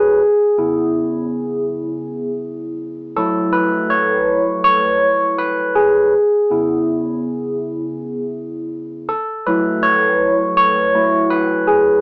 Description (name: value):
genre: R&B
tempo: 81 BPM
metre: 4/4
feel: swing 60% on 16ths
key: F# minor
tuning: A4 = 439 Hz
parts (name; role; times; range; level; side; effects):
- barky tine electric piano; solo; 0.0-12.0 s; C#3 to C#5; -17 LUFS; equal; overdrive, phaser
room: moderate studio reverb, RT60 0.7 s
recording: band playing live in one room, small speaker sound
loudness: -17 LUFS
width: mono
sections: 0.0-12.0 A section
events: tine electric piano solo 0.0-12.0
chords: 0.2 C#m7; 3.2 F#m7; 6.1 C#m7; 9.1 F#m7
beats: | 0.20 0.94 1.69 2.43 | 3.17 3.91 4.65 5.39 | 6.13 6.87 7.61 8.35 | 9.09 9.83 10.57 11.31